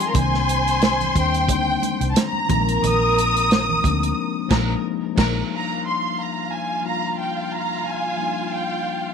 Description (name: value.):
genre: lush 1970s-style soul.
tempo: 90 BPM.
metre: 4/4.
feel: swing 54% on 16ths.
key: Eb major.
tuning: A4 = 440 Hz.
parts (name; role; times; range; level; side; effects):
warm studio violin section; melody; 0.0-9.1 s; G5 to Eb6; -24 LUFS; equal; none.
warm studio string section; second line; 0.0-9.1 s; F4 to C6; -26 LUFS; equal; tape echo.
mellow tine electric piano; accompaniment; 0.0-9.1 s; D3 to F4; -26 LUFS; left 14 dB; slow stereo tremolo.
warm soul drum kit; drums; 0.0-5.4 s; crash cymbal, hi-hat, kick drum, snare drum; -22 LUFS; right 2 dB; none.
vintage muted fingered electric bass; bass; 0.1-5.4 s; Bb1 to Eb2; -24 LUFS; right 1 dB; none.
congas; percussion; 0.1-4.0 s; none; -31 LUFS; right 13 dB; none.
glockenspiel with hard plastic mallets; texture; 0.8-2.8 s; C6; -39 LUFS; left 15 dB; none.
room: moderate spring reverb, RT60 2.7 s.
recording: 1960s-style stereo with parts hard left and right.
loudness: -19 LUFS.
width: side -6 dB against mid.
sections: 0.0-5.5 A section; 5.5-9.1 B section.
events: band accent 4.2-5.5.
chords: 0.2 Cm7; 2.5 Bb7sus4; 5.5 Ebmaj9.